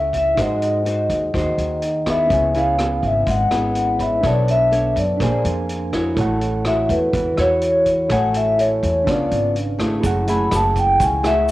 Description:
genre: bossa nova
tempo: 124 BPM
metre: 4/4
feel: straight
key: unclear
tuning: A4 = 439 Hz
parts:
  - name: vibraphone with medium mallets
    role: melody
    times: 0.0-11.5 s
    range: B4 to B5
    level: -18 LUFS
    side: left 1 dB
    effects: none
  - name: nylon-string guitar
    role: accompaniment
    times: 0.0-11.5 s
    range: C#3 to C#5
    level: -24 LUFS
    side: equal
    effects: cassette tape
  - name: tine electric piano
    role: accompaniment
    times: 0.0-11.5 s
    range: C#4 to B5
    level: -27 LUFS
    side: right 4 dB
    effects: medium stereo tremolo, cassette tape
  - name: upright bass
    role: bass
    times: 0.0-11.5 s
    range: F#1 to G#2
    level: -23 LUFS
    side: equal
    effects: none
  - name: vintage drum kit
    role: drums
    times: 0.1-11.5 s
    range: hi-hat, kick drum, rim click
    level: -28 LUFS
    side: equal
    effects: none
  - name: egg shaker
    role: percussion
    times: 10.0-11.5 s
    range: none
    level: -42 LUFS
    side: left 2 dB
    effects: none
room: light reverb, small room ambience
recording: home recording on cassette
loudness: -16 LUFS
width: side -16 dB against mid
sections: 0.0-10.0 A section; 10.0-11.5 B section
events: vibraphone solo 10.0-11.5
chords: 0.4 G#7; 2.3 C#m7; 4.2 Bm9; 5.2 Bb9; 6.2 A6; 9.1 C#7b9; 10.0 F#m9

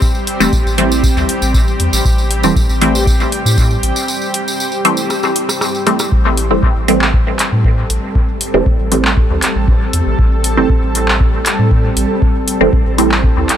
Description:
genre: dub techno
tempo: 118 BPM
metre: 4/4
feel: straight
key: A minor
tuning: A4 = 441 Hz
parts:
  - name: granular cloud pad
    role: sustained chords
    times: 0.0-13.6 s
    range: G3 to A4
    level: -19 LUFS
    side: equal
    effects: built-in reverb, sidechain pumping
  - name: electronic kick drum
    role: drums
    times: 0.0-13.3 s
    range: none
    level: -14 LUFS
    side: equal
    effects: none
  - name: tambourine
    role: percussion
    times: 0.0-6.1 s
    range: none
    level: -22 LUFS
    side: right 2 dB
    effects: none
  - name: booming analog drum machine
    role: drums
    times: 0.3-13.6 s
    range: handclaps, hi-hat, rim click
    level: -18 LUFS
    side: equal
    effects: none
  - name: filtered dub chord stab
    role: stabs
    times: 0.4-13.3 s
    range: E3 to C4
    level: -17 LUFS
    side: right 1 dB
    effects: phaser, sidechain pumping, dub echo
  - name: soft dub sub bass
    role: bass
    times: 0.4-13.5 s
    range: E1 to A2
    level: -17 LUFS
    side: equal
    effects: sidechain pumping
room: light reverb, digital ambience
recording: none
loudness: -11 LUFS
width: side -10 dB against mid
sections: 0.0-6.1 A section; 6.1-13.6 A section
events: break 4.1-6.1; drum fill 5.1-6.1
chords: 0.0 Am7

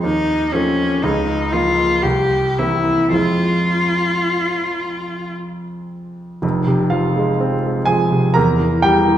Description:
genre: classical, romantic duo for cello and grand piano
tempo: 53-64 BPM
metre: 3/4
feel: rubato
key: F minor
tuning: A4 = 439 Hz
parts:
  - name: clear cello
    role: melody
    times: 0.0-5.3 s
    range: Db4 to G4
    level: -18 LUFS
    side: left 2 dB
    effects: none
  - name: clear grand piano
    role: accompaniment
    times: 0.0-9.2 s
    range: F1 to Bb5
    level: -17 LUFS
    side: right 1 dB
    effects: none
room: wet recital hall reverb, RT60 1.4 s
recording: recorded in a church or concert hall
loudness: -15 LUFS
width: side -11 dB against mid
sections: 0.0-6.4 A section; 6.4-9.2 B section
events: none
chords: 0.0 F7/Eb; 1.0 Bbm/Db; 2.0 C7; 3.1 Fm; 8.4 Edim

